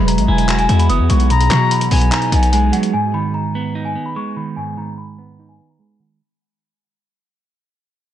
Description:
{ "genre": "hip hop, trap", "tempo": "147 BPM", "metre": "4/4", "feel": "half-time", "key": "G# minor", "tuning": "A4 = 442 Hz", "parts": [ { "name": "celesta", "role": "melody", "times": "0.0-6.2 s", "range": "F#5 to D#6", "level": "-22 LUFS", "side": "left 2 dB", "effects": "low-pass filter, ping-pong delay" }, { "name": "clean electric guitar", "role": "accompaniment", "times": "0.0-6.2 s", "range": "G#2 to F#4", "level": "-20 LUFS", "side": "right 5 dB", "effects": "low-pass filter" }, { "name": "ethereal airy pad", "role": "sustained chords", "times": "0.0-2.9 s", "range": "E3 to F#5", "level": "-27 LUFS", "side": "left 1 dB", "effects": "ensemble chorus, built-in reverb, phaser" }, { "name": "distorted 808-style bass", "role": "bass", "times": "0.0-2.7 s", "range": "E1 to B2", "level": "-15 LUFS", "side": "left 1 dB", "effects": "distortion" }, { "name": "dusty soul sampler-style drum kit", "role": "drums", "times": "0.1-2.9 s", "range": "handclaps, hi-hat", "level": "-23 LUFS", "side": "left 1 dB", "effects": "none" }, { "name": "reedy silver concert flute", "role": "second line", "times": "0.3-2.5 s", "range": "G#5 to A#5", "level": "-22 LUFS", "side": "left 5 dB", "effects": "ping-pong delay" } ], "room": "little or no reverb", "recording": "dark, warm production, nothing above 10.3 kHz", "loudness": "-14 LUFS", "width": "side -11 dB against mid", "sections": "0.0-2.9 A section; 2.9-6.2 B section", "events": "fade-out 2.9-6.2; filter sweep 2.9-6.2", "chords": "0.0 Eadd9; 1.3 B6; 2.9 G#m" }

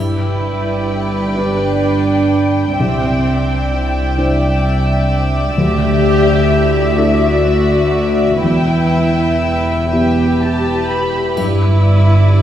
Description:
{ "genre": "cinematic, emotional film score for orchestra", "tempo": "40-44 BPM (dotted quarters)", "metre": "6/8", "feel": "rubato", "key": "G major", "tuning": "A4 = 440 Hz", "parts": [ { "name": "dark studio violin section", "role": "melody", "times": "0.0-11.4 s", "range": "E5 to B5", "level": "-23 LUFS", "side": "left 1 dB", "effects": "none" }, { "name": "clear studio violin section", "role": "second line", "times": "0.0-12.4 s", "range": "B4 to E5", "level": "-21 LUFS", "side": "left 1 dB", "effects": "none" }, { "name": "felt-muted upright piano", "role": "accompaniment", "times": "0.0-12.4 s", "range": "C2 to C5", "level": "-20 LUFS", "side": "equal", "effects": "none" }, { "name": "warm studio viola section", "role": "accompaniment", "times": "0.0-12.4 s", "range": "C4 to G4", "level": "-18 LUFS", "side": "equal", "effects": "none" }, { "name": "concert harp", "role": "arpeggios", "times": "0.0-12.4 s", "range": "G2 to C5", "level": "-24 LUFS", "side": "left 5 dB", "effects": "none" }, { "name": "warm studio cello section", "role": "bass", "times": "0.0-12.4 s", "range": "C2 to G2", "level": "-20 LUFS", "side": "right 2 dB", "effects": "none" }, { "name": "warm studio double bass section", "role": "bass", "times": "0.0-12.4 s", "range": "E1 to D2", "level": "-19 LUFS", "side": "right 1 dB", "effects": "none" }, { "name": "triangle", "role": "percussion", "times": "11.4-12.4 s", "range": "none", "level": "-39 LUFS", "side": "right 1 dB", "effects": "none" } ], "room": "wet scoring stage reverb, RT60 1.6 s", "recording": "heard from further back in the room", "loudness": "-12 LUFS", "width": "side -10 dB against mid", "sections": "0.0-12.4 A section", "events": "none", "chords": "0.0 G; 2.8 Cadd9; 5.6 Dsus2; 8.4 Em; 11.4 G" }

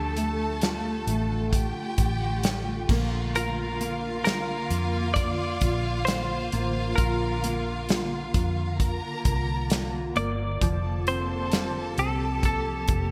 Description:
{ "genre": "pop ballad", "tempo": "66 BPM", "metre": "4/4", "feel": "straight", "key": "Bb major", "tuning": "A4 = 440 Hz", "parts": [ { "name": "direct-recorded clean electric guitar", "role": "melody", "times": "0.0-13.1 s", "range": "A4 to D5", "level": "-34 LUFS", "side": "equal", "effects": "analog chorus" }, { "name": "rich studio violin section", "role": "second line", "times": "0.0-13.1 s", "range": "F4 to Bb5", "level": "-37 LUFS", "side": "equal", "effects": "none" }, { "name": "warm concert grand piano", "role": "accompaniment", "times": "0.0-13.1 s", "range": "D3 to F4", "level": "-36 LUFS", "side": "equal", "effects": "analog chorus" }, { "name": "granular cloud pad", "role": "sustained chords", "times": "0.0-13.1 s", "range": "D3 to G4", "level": "-36 LUFS", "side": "equal", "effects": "built-in reverb" }, { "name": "vintage muted fingered electric bass", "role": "bass", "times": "0.0-13.1 s", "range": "F1 to F2", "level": "-32 LUFS", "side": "equal", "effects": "none" }, { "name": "modern studio drum kit", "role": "drums", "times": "0.2-13.1 s", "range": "crash cymbal, hi-hat, kick drum, snare drum", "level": "-29 LUFS", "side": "equal", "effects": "gated reverb" } ], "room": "moderate lush hall reverb, RT60 2.5 s", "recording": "bright 1980s-style digital production", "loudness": "-27 LUFS", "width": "mono", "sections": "0.0-13.1 A section", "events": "none", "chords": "0.0 Dm; 2.9 Bb; 10.6 Fadd9" }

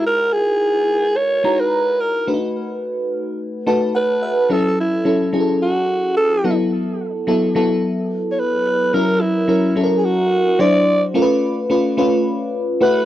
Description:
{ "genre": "pop", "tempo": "108 BPM", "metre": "4/4", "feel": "swing 54% on 16ths", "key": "unclear", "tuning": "A4 = 440 Hz", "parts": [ { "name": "bell-like FM electric piano", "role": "accompaniment", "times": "0.0-13.1 s", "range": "F#3 to A#5", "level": "-18 LUFS", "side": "left 1 dB", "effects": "lush chorus" }, { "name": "breathy alto saxophone", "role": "melody", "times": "0.1-13.1 s", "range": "E4 to D5", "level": "-18 LUFS", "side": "right 1 dB", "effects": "cassette tape" } ], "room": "moderate booth ambience, RT60 0.2 s", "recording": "home recording on cassette", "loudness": "-15 LUFS", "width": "side -13 dB against mid", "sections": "0.0-4.5 A section; 4.5-13.1 B section", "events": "FM electric piano fill 3.4-4.5", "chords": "0.0 F#13; 2.3 B7; 4.5 F#m7; 6.4 B7sus4; 8.9 F#7; 10.6 D9; 11.2 C#aug7" }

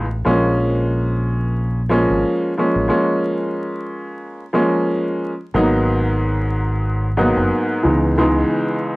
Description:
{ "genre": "hip hop, boom-bap hip-hop", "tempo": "91 BPM", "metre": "4/4", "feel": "swing 55% on 16ths", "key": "G# dorian", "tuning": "A4 = 442 Hz", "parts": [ { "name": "warm upright piano", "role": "accompaniment", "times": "0.0-9.0 s", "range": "C#2 to D#4", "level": "-17 LUFS", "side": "equal", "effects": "cassette tape, high-pass filter, low-pass filter" }, { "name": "deep dub fingered electric bass", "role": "bass", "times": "0.0-8.4 s", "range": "F#1 to C#2", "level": "-20 LUFS", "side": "equal", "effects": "none" } ], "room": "light reverb", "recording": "home recording on cassette, vinyl crackle", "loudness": "-16 LUFS", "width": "side -22 dB against mid", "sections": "0.0-5.5 A section; 5.5-9.0 B section", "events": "break 2.9-5.5", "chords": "0.3 A#m7; 5.5 G#m7; 7.8 C#m7" }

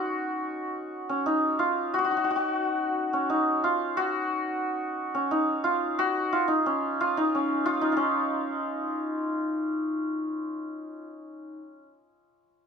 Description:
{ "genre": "indian classical", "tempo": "179 BPM", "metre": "3/4", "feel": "straight", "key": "C# major", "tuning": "A4 = 441 Hz", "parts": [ { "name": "santur", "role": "solo", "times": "0.0-11.8 s", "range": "C#4 to F#4", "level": "-25 LUFS", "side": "equal", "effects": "none" } ], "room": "moderate studio ambience, RT60 0.5 s", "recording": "none", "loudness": "-25 LUFS", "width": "side -6 dB against mid", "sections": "0.0-8.0 A section; 8.0-9.9 B section", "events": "speeding up 0.0-9.9", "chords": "none" }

